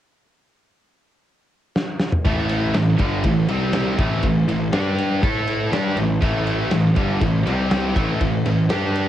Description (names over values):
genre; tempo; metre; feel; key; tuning
heavy metal; 121 BPM; 4/4; straight; A minor; A4 = 436 Hz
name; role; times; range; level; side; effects
big rock drum kit; drums; 1.8-9.1 s; kick drum, ride cymbal, snare drum, toms; -24 LUFS; equal; cassette tape
scooped high-gain guitar; riff; 2.2-9.1 s; G2 to A4; -22 LUFS; right 6 dB; distortion, cassette tape
tight distorted guitar; riff; 2.2-9.1 s; G2 to A4; -24 LUFS; left 7 dB; distortion, cassette tape
fuzz picked electric bass; bass; 2.3-9.1 s; G1 to A2; -24 LUFS; equal; overdrive
room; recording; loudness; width
little or no reverb; home recording on cassette; -18 LUFS; side -11 dB against mid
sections
0.3-2.3 A section; 2.3-9.1 B section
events
drum fill 1.8-2.3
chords
0.3 N.C.; 2.3 A5; 3.5 C5; 4.0 A5; 4.7 G5; 5.2 A5; 7.5 C5; 8.0 A5